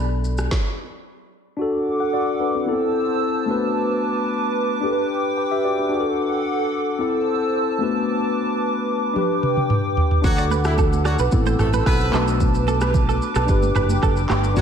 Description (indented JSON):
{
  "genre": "afrobeats",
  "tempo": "111 BPM",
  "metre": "4/4",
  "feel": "straight",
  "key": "D mixolydian",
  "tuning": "A4 = 440 Hz",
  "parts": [
    { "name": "mellow tine electric piano", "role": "accompaniment", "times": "0.0-14.6 s", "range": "F#3 to G5", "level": "-23 LUFS", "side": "left 3 dB", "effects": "wide subtle chorus" },
    { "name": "hollow soft pad", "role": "sustained chords", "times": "0.0-14.6 s", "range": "A4 to E6", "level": "-25 LUFS", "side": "right 2 dB", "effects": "chorus" },
    { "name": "fingered electric bass", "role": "bass", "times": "0.0-0.5, 10.2-14.6 s", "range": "F#1 to D2", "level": "-22 LUFS", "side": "equal", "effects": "none" },
    { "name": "afro-pop drum kit", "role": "drums", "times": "0.2-0.6, 9.2-14.6 s", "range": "handclaps, kick drum, rim click, shaker, snare drum, toms", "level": "-22 LUFS", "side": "equal", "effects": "vintage 12-bit sampler grit" },
    { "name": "warm horn section", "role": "second line", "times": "10.2-14.6 s", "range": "E3 to B4", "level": "-28 LUFS", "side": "equal", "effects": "none" },
    { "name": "congas", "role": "percussion", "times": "10.2-14.6 s", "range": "none", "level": "-31 LUFS", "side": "right 10 dB", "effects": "none" },
    { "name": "electric guitar at the edge of break-up", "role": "riff", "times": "10.4-14.4 s", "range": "G4 to D5", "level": "-27 LUFS", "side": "right 9 dB", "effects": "wide subtle chorus, ping-pong delay" }
  ],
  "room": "moderate lush hall reverb, RT60 1.8 s",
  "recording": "dreamy mix soaked in reverb",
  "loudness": "-18 LUFS",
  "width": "side -7 dB against mid",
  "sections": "0.0-1.6 A section; 1.6-14.6 B section",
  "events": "stop 0.5-1.6; drum fill 9.2-10.2",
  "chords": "0.0 Bm7; 0.5 N.C.; 1.6 D; 2.7 Am; 3.5 Bm7; 4.8 G; 5.9 D; 7.0 Am; 7.8 Bm7; 9.2 G; 10.2 D; 11.3 Am; 12.1 Bm7; 13.5 G",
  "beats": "0.51 1.05 | 1.59 2.13 2.67 3.21 | 3.75 4.29 4.84 5.38 | 5.92 6.46 7.00 7.54 | 8.08 8.62 9.16 9.70 | 10.24 10.78 11.32 11.86 | 12.40 12.94 13.48 14.03 | 14.57"
}